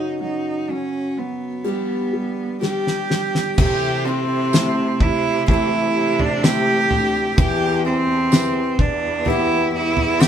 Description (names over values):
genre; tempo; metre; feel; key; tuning
pop ballad; 63 BPM; 4/4; straight; C major from 3.6 s; A4 = 440 Hz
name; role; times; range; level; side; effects
warm cello; melody; 0.0-10.3 s; B3 to G4; -20 LUFS; right 2 dB; none
felt-muted upright piano; accompaniment; 0.0-10.3 s; C3 to B4; -25 LUFS; equal; none
picked steel-string acoustic guitar; arpeggios; 0.0-10.3 s; F#2 to G4; -30 LUFS; left 7 dB; none
damped 70s drum kit; drums; 2.6-10.3 s; crash cymbal, kick drum, snare drum, toms; -18 LUFS; equal; none
clear studio cello section; bass; 3.6-10.3 s; D2 to C3; -27 LUFS; right 2 dB; none
tambourine; percussion; 4.5-10.3 s; none; -31 LUFS; right 6 dB; none
room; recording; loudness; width
moderate studio ambience, RT60 0.5 s; band playing live in one room; -17 LUFS; side -9 dB against mid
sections
0.0-3.6 A section; 3.6-10.3 B section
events
break 0.0-3.6; drum fill 2.6-3.6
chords
0.0 F#5; 1.6 G7; 3.6 C6; 7.4 Em